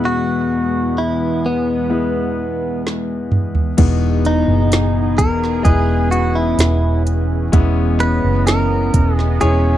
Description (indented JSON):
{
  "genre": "pop ballad",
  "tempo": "64 BPM",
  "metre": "4/4",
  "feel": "straight",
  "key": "unclear",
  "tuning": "A4 = 436 Hz",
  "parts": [
    { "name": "direct-recorded clean electric guitar", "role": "melody", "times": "0.0-9.8 s", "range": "B3 to B4", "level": "-20 LUFS", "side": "right 1 dB", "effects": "tape echo" },
    { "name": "clear concert grand piano", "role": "accompaniment", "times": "0.0-9.8 s", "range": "E2 to D#5", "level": "-20 LUFS", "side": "left 4 dB", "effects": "none" },
    { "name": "sweeping resonant pad", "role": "sustained chords", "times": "0.0-9.8 s", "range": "E2 to D#5", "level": "-24 LUFS", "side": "right 2 dB", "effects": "chorus" },
    { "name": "smooth R&B drum kit", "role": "drums", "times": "2.9-9.6 s", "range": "crash cymbal, hi-hat, kick drum, snare drum, toms", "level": "-16 LUFS", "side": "right 1 dB", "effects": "none" },
    { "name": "vintage muted fingered electric bass", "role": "bass", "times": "3.8-9.8 s", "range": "E1 to F#1", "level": "-16 LUFS", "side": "right 1 dB", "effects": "none" }
  ],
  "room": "little or no reverb",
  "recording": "dry, close 1970s-style studio recording",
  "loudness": "-14 LUFS",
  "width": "side -12 dB against mid",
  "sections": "0.0-3.8 A section; 3.8-9.8 B section",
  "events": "drum fill 2.9-3.8",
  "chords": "0.0 E; 3.8 Emaj7"
}